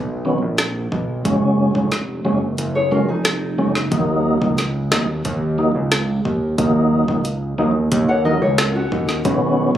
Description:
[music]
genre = dancehall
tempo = 90 BPM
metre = 4/4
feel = straight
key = Eb minor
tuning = A4 = 440 Hz
[part]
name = fat analog bass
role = bass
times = 0.0-9.8 s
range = F1 to Eb2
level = -21 LUFS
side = right 1 dB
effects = none
[part]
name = tonewheel organ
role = accompaniment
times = 0.2-9.8 s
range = Db3 to Eb4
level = -19 LUFS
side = equal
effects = chorus vibrato, stopped rotary speaker
[part]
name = afro-pop drum kit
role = drums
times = 0.6-9.8 s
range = hi-hat, kick drum, rim click, snare drum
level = -22 LUFS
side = equal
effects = none
[part]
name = nylon-string guitar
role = arpeggios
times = 2.8-3.9, 8.1-9.2 s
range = Db4 to Gb5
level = -21 LUFS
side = left 2 dB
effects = none
[sound]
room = light reverb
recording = recorded on a phone in the room, club reverb, compression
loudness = -16 LUFS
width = side -11 dB against mid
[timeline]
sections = 0.0-3.9 A section; 3.9-9.8 B section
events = kick muted 2.6-3.9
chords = 0.0 N.C.; 1.3 Gbsus2; 3.9 Ebm; 9.3 Badd9

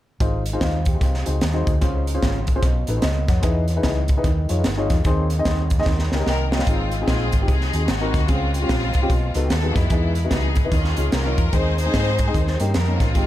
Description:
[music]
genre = uptempo gospel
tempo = 148 BPM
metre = 4/4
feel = swing 63% on 8ths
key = Ab major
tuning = A4 = 442 Hz
[part]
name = dark upright piano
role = accompaniment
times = 0.2-13.3 s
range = Ab2 to Bb5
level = -26 LUFS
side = left 2 dB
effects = dub echo
[part]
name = hollow-body short-scale fingered electric bass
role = bass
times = 0.2-13.3 s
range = G1 to Ab2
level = -22 LUFS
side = equal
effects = none
[part]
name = crisp fusion drum kit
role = drums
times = 0.2-13.3 s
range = hi-hat, kick drum, snare drum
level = -22 LUFS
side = equal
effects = none
[part]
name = clear studio string section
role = melody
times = 6.3-13.3 s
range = Ab3 to C5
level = -26 LUFS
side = left 2 dB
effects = dub echo
[sound]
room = little or no reverb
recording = echo-heavy mix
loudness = -18 LUFS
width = side -14 dB against mid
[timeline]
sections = 0.2-6.7 A section; 6.7-13.3 B section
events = drum fill 5.9-6.7; upright piano fill 5.9-6.7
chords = 0.2 Ab6; 1.0 Ab7/C; 1.8 Dbmaj7; 2.6 B7; 3.4 Emaj7; 4.2 Eb9sus4; 5.1 Ab/Eb; 5.9 Eb7; 6.7 Ab6; 7.5 Ab7/C; 8.3 Dbmaj7; 9.1 B7; 9.9 Emaj7; 10.7 Eb9sus4; 11.5 Ab/Eb; 12.3 Eb7

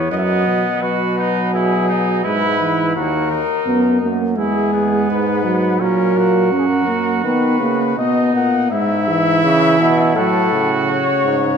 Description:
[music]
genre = classical, imitative canzona for brass ensemble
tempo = 84 BPM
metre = 4/4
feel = straight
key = unclear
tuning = A4 = 438 Hz
[part]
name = warm trumpet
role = melody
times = 0.0-11.6 s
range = G#4 to F#5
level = -20 LUFS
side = left 8 dB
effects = none
[part]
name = clear trumpet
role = second line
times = 0.0-11.6 s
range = B3 to F#4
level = -22 LUFS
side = right 5 dB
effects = none
[part]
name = dark euphonium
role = accompaniment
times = 0.0-11.6 s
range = C#3 to C#4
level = -18 LUFS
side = right 2 dB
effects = none
[part]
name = bright bass trombone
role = bass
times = 0.0-11.6 s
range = D#2 to D#3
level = -21 LUFS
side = right 1 dB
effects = none
[sound]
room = wet concert hall reverb, RT60 1.9 s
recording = none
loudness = -14 LUFS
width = side -6 dB against mid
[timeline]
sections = 0.0-8.7 A section; 8.7-11.6 B section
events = none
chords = 0.1 B/F#; 1.5 E/B; 3.0 B/D#; 4.4 E; 5.8 F#/A#; 7.2 B; 8.7 C#m/G#; 10.2 F#m/A

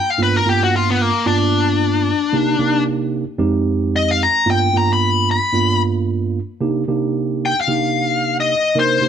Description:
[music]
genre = blues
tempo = 112 BPM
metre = 4/4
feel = swing 56% on 16ths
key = C minor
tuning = A4 = 440 Hz
[part]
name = smooth overdriven lead guitar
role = melody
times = 0.0-9.1 s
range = A#3 to B5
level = -16 LUFS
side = left 4 dB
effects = none
[part]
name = mellow tine electric piano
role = accompaniment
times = 0.2-9.1 s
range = F2 to Bb4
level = -18 LUFS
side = right 4 dB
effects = none
[sound]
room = moderate stone room reverb, RT60 1.1 s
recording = band playing live in one room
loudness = -15 LUFS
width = side -8 dB against mid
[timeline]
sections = 0.0-6.6 A section; 6.6-9.1 B section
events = lead electric guitar solo 0.0-6.6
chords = 0.0 G7#9; 2.3 Cm7; 3.4 Fm7; 4.5 G7#9; 6.6 Cm7

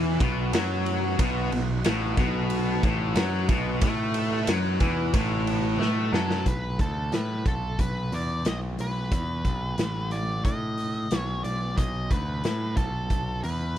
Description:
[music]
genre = blues rock power trio and southern rock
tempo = 91 BPM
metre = 4/4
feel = straight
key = B mixolydian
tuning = A4 = 440 Hz
[part]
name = overdriven tonewheel organ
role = sustained chords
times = 0.0-6.4 s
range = D#4 to B4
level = -39 LUFS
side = right 5 dB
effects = slow rotary speaker, chorus vibrato
[part]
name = overdriven electric guitar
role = riff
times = 0.0-6.4 s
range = A2 to A3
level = -27 LUFS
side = left 2 dB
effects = none
[part]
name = growling picked electric bass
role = bass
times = 0.0-13.8 s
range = A1 to A2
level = -29 LUFS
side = equal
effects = overdrive
[part]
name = raw garage drum kit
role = drums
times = 0.2-13.6 s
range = hi-hat, kick drum, ride cymbal, snare drum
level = -28 LUFS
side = equal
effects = none
[part]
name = octave-fuzz lead guitar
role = melody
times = 6.1-13.8 s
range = A4 to D#5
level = -33 LUFS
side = equal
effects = distortion
[sound]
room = studio reverb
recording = none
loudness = -24 LUFS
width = side -11 dB against mid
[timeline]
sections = 0.0-6.5 A section; 6.5-13.8 B section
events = drum fill 5.8-6.5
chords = 0.0 B; 6.5 N.C.

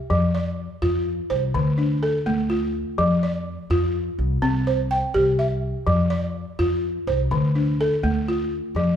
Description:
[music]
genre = west african traditional, West African string and xylophone music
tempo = 83 BPM (dotted quarters)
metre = 12/8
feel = straight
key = F major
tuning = A4 = 440 Hz
[part]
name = balafon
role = arpeggios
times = 0.0-9.0 s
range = D3 to G5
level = -21 LUFS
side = equal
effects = none
[part]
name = upright bass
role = bass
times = 0.1-9.0 s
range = C2 to F2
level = -26 LUFS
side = equal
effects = none
[sound]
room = wet large studio reverb, RT60 1.4 s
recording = band playing live in one room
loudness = -20 LUFS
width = side -9 dB against mid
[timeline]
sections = 0.0-9.0 A section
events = none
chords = 0.1 F5; 1.5 Dm; 3.0 F5; 4.4 C; 5.9 F5; 7.3 Dm

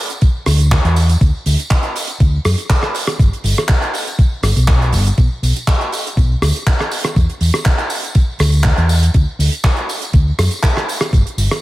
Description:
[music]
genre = nu-disco, nu disco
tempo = 121 BPM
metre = 4/4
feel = swing 53% on 16ths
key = unclear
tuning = A4 = 440 Hz
[part]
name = damped 70s drum kit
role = drums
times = 0.1-11.6 s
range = handclaps, hi-hat, rim click, tambourine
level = -19 LUFS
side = right 1 dB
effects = tape echo
[part]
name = electronic kick drum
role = drums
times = 0.2-11.2 s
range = none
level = -13 LUFS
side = equal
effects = none
[part]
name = hollow-body short-scale fingered electric bass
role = bass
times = 0.5-11.5 s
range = G1 to F#2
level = -14 LUFS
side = equal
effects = none
[sound]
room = light reverb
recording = echo-heavy mix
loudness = -12 LUFS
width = side -17 dB against mid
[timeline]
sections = 0.0-11.6 A section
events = none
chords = none

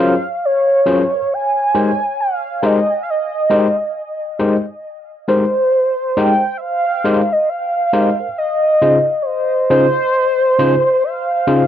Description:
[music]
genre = reggae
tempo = 68 BPM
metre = 4/4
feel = swing 61% on 16ths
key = Ab major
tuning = A4 = 437 Hz
[part]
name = warm velvety synth lead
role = melody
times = 0.0-11.7 s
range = C5 to Ab5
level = -15 LUFS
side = right 1 dB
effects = chorus, tape echo
[part]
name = overdriven tine electric piano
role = accompaniment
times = 0.0-11.6 s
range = Db3 to C5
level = -15 LUFS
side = left 2 dB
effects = slapback echo
[sound]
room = moderate booth ambience, RT60 0.2 s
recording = dry, close 1970s-style studio recording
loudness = -13 LUFS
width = side -10 dB against mid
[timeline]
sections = 0.0-11.7 A section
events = none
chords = 0.0 Gbmaj9#11; 1.3 Abmaj7; 8.4 Dbmaj7

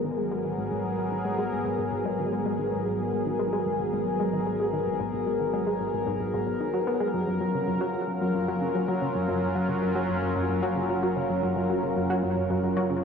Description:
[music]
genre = ambient, sequencer-driven space music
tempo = 112 BPM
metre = 4/4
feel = straight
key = unclear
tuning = A4 = 440 Hz
[part]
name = sweeping resonant pad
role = sustained chords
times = 0.0-13.0 s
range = F#3 to A#4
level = -27 LUFS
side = equal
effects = chorus, shimmer reverb
[part]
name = tight sequenced synth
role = riff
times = 0.0-13.0 s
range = F#2 to B3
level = -30 LUFS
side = left 1 dB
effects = chorus, analog delay, shimmer reverb
[part]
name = analog drone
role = bass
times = 0.0-13.0 s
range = F#1 to G#1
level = -38 LUFS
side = left 1 dB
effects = chorus
[sound]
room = wet huge ambient reverb, RT60 7.7 s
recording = worn, warbling old tape, cassette tape, warbly pitch drift, studio reverb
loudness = -25 LUFS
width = side -6 dB against mid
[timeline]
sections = 0.0-13.0 A section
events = filter sweep on synth arpeggio sound 0.0-13.0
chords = 0.0 G#m9; 7.1 F#maj7

